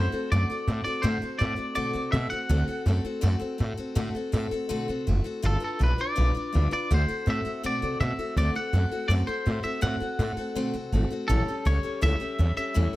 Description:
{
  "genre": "rockabilly",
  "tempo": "164 BPM",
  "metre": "4/4",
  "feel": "straight",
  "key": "D mixolydian",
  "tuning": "A4 = 440 Hz",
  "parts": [
    { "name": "twangy electric guitar", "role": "melody", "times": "0.0-2.8, 5.5-13.0 s", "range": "A4 to F#5", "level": "-30 LUFS", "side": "equal", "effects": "tremolo, plate reverb, analog delay" },
    { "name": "picked steel-string acoustic guitar", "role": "accompaniment", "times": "0.0-13.0 s", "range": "A2 to B4", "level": "-31 LUFS", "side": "left 2 dB", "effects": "plate reverb" },
    { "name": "upright bass", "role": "bass", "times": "0.0-13.0 s", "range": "F#1 to C3", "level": "-25 LUFS", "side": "equal", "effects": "none" }
  ],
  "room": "light reverb",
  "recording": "none",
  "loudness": "-24 LUFS",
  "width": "side -17 dB against mid",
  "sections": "0.0-13.0 A section",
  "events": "none",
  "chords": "0.0 D7; 5.4 G7; 6.9 D7; 11.3 A7"
}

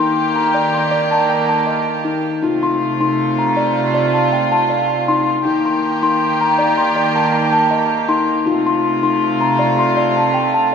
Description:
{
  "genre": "world meditative, meditative tuned percussion",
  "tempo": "80 BPM",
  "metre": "4/4",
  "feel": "straight",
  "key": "unclear",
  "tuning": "A4 = 443 Hz",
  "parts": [
    { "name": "rich chamber string section", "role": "sustained chords", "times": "0.0-10.7 s", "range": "C3 to G4", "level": "-18 LUFS", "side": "right 2 dB", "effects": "none" },
    { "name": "steel tongue drum", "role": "arpeggios", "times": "0.0-10.7 s", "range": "Eb4 to C6", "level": "-16 LUFS", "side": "left 1 dB", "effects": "none" }
  ],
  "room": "wet echo chamber reverb, RT60 2.3 s",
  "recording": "none",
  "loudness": "-14 LUFS",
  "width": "side -7 dB against mid",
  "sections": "0.0-10.7 A section",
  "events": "none",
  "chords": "0.0 Eb; 2.4 F; 5.5 Eb; 8.5 F"
}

